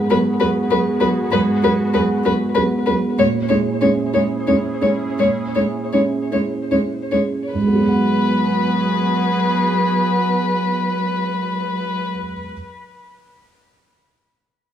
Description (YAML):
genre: neoclassical piano and strings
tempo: 71-100 BPM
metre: 3/4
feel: rubato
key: G# minor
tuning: A4 = 438 Hz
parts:
  - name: felt-muted upright piano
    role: accompaniment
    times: 0.0-12.5 s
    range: G#2 to F#5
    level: -21 LUFS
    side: right 3 dB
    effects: none
  - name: sweeping resonant pad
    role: sustained chords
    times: 0.0-12.1 s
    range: B3 to G#4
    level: -26 LUFS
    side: equal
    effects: chorus
  - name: muted violin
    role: melody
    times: 0.1-12.1 s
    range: B4 to C#5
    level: -21 LUFS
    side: left 4 dB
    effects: tape echo
  - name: muted cello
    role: second line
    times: 0.1-12.1 s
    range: F#3 to G#3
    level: -22 LUFS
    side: right 2 dB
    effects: none
room: moderate large studio reverb, RT60 0.9 s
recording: small room ambience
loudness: -16 LUFS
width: side -10 dB against mid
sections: 0.0-7.5 A section; 7.5-12.5 B section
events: slowing down 2.2-7.5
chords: 0.0 G#m7; 3.2 A#m7b5; 7.5 G#m7